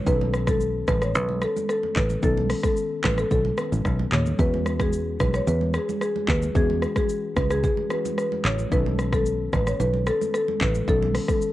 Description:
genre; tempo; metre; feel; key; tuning
afrobeats; 111 BPM; 4/4; straight; E major; A4 = 439 Hz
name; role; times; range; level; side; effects
tine electric piano; accompaniment; 0.0-11.5 s; D#3 to A4; -33 LUFS; left 8 dB; cassette tape
marimba with medium mallets; melody; 0.1-11.4 s; G#4 to C#5; -26 LUFS; left 1 dB; cassette tape
fingered electric bass; bass; 0.1-11.2 s; A1 to E2; -25 LUFS; equal; none
afro-pop drum kit; drums; 0.1-11.5 s; handclaps, hi-hat, kick drum, rim click, shaker, toms; -26 LUFS; equal; vintage 12-bit sampler grit, cassette tape
congas; percussion; 0.1-11.4 s; none; -32 LUFS; right 8 dB; none
room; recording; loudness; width
light reverb; home recording on cassette; -21 LUFS; side -15 dB against mid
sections
0.0-11.5 A section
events
none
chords
0.1 B9; 4.4 E69; 8.7 B9

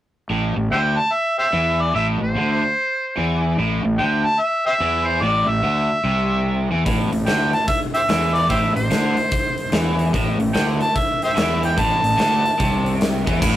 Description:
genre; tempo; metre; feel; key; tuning
blues rock power trio and southern rock; 146 BPM; 4/4; swing 64% on 8ths; A minor; A4 = 442 Hz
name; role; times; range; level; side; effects
crunchy overdriven guitar; riff; 0.3-13.6 s; A2 to E3; -23 LUFS; equal; none
fuzz fingered electric bass; bass; 0.3-13.6 s; A1 to E2; -22 LUFS; equal; overdrive
warm harmonica; melody; 0.7-13.0 s; G4 to A5; -20 LUFS; equal; overdrive
huge arena drum kit; drums; 6.9-13.5 s; crash cymbal, hi-hat, kick drum, snare drum; -22 LUFS; left 1 dB; none
room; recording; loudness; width
moderate studio reverb, RT60 0.5 s; rough rehearsal-room recording, warm saturation; -17 LUFS; side -13 dB against mid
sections
0.3-13.4 A section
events
none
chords
0.3 Am

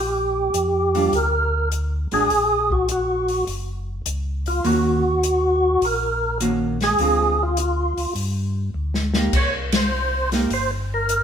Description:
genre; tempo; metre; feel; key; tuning
soul jazz organ trio; 102 BPM; 4/4; swing 68% on 8ths; unclear; A4 = 439 Hz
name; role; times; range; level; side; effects
percussive tonewheel organ; melody; 0.0-11.2 s; F4 to Db5; -20 LUFS; equal; slow rotary speaker, overdrive, chorus vibrato
mellow tonewheel organ; bass; 0.0-11.2 s; Gb1 to G2; -25 LUFS; equal; slow rotary speaker
open jazz drum kit; drums; 0.5-11.2 s; crash cymbal, hi-hat, kick drum, ride cymbal, snare drum; -25 LUFS; left 2 dB; none
archtop guitar, miked and amplified; accompaniment; 0.9-10.5 s; D3 to G4; -24 LUFS; right 2 dB; none
room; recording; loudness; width
wet stone room reverb, RT60 1.2 s; band playing live in one room; -18 LUFS; side -8 dB against mid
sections
0.0-11.2 A section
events
drum fill 8.8-9.3; band accent 9.6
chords
0.0 Bb6; 2.3 Gbadd9; 4.6 Ebm7; 7.0 Dm7b5; 8.2 G5; 9.3 C7(no3)

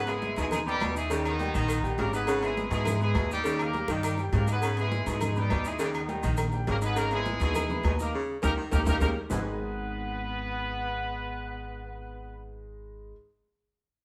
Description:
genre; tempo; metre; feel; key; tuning
latin, salsa; 205 BPM; 4/4; straight; G# harmonic minor; A4 = 439 Hz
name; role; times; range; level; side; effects
brilliant horn section; melody; 0.0-12.4 s; D#3 to B4; -35 LUFS; equal; none
breathy baritone saxophone; second line; 0.0-9.4 s; G#2 to D#3; -37 LUFS; equal; none
upright bass; bass; 0.0-13.1 s; G#1 to G#2; -33 LUFS; equal; none
bright grand piano; accompaniment; 0.1-13.1 s; D#3 to D#6; -39 LUFS; equal; none
agogo bells and timbales; percussion; 0.1-9.4 s; none; -39 LUFS; equal; none
congas; percussion; 0.1-9.4 s; none; -41 LUFS; equal; none
cowbell and bongos; percussion; 0.1-9.4 s; none; -42 LUFS; equal; none
maracas; percussion; 0.1-9.4 s; none; -50 LUFS; equal; none
room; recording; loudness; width
wet large studio reverb, RT60 0.9 s; band playing live in one room; -29 LUFS; mono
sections
0.0-9.3 A section; 9.3-11.7 B section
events
drum fill 3.9-4.6, 8.9-9.3; band accent 8.1-9.3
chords
0.0 G#m; 1.1 D#7; 2.3 G#m; 3.5 D#7; 4.6 G#m; 5.8 D#7; 7.0 G#m; 8.1 D#7; 9.3 G#m

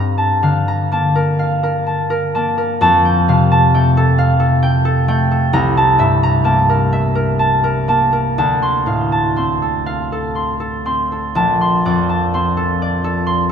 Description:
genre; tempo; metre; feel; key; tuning
classical, solo harp piece; 40-45 BPM (dotted quarters); 6/8; rubato; unclear; A4 = 440 Hz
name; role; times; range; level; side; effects
concert harp; solo; 0.0-13.5 s; Bb1 to C6; -13 LUFS; equal; none
room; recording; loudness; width
wet cathedral reverb, RT60 6.7 s; none; -13 LUFS; side -7 dB against mid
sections
0.0-13.5 A section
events
none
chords
0.0 Gm9; 2.8 Fadd9; 5.5 C6; 8.4 Dm7; 11.3 Bbmaj9

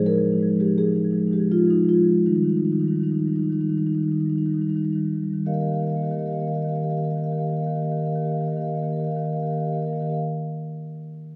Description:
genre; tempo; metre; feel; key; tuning
classical, contemporary piece for solo marimba; 71-85 BPM; 4/4; rubato; Eb major; A4 = 440 Hz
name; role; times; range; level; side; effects
marimba with soft mallets; solo; 0.0-10.2 s; Eb3 to F5; -23 LUFS; equal; none
room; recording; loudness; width
wet stone room reverb, RT60 1.3 s; dark, warm production; -23 LUFS; mono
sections
0.0-5.5 A section; 5.5-8.8 B section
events
slowing down 0.0-5.5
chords
0.0 Fm7; 2.3 Eb; 5.5 Ebadd9

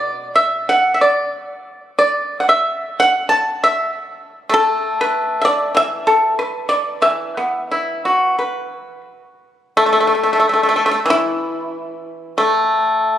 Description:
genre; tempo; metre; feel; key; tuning
chinese traditional, Chinese solo plucked strings; 84-97 BPM; 4/4; rubato; E shang mode; A4 = 440 Hz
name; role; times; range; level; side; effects
pipa; solo; 0.0-13.2 s; B2 to A5; -15 LUFS; equal; none
room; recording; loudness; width
moderate concert hall reverb, RT60 2.3 s; recorded on a phone in the room, studio ambience; -14 LUFS; side -11 dB against mid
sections
0.0-9.8 A section; 9.8-13.2 B section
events
none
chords
none

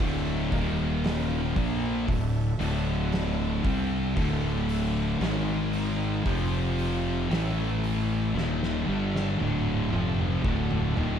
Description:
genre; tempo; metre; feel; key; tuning
stoner and doom metal; 57 BPM; 4/4; straight; D minor; A4 = 439 Hz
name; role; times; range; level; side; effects
bright tonewheel organ; sustained chords; 0.0-11.2 s; F3 to F5; -41 LUFS; equal; slow rotary speaker
heavy high-gain guitar; riff; 0.0-11.2 s; D2 to C4; -35 LUFS; left 1 dB; distortion
thick fuzz guitar; riff; 0.0-11.2 s; D2 to C4; -30 LUFS; left 9 dB; distortion
thick fuzz guitar; riff; 0.0-11.2 s; D2 to C4; -31 LUFS; right 11 dB; distortion
fuzz fingered electric bass; bass; 0.0-11.2 s; D1 to C2; -31 LUFS; equal; overdrive, tube saturation
oversized low-tuned drum kit; drums; 0.0-11.2 s; hi-hat, kick drum, snare drum, toms; -33 LUFS; equal; none
room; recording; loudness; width
little or no reverb; dark, warm production; -24 LUFS; side -8 dB against mid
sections
0.0-11.2 A section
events
drum fill 8.3-11.2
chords
0.0 D5; 0.5 Eb5; 1.6 Dm; 5.2 G#5; 6.3 F5; 7.3 A5; 8.3 Dm

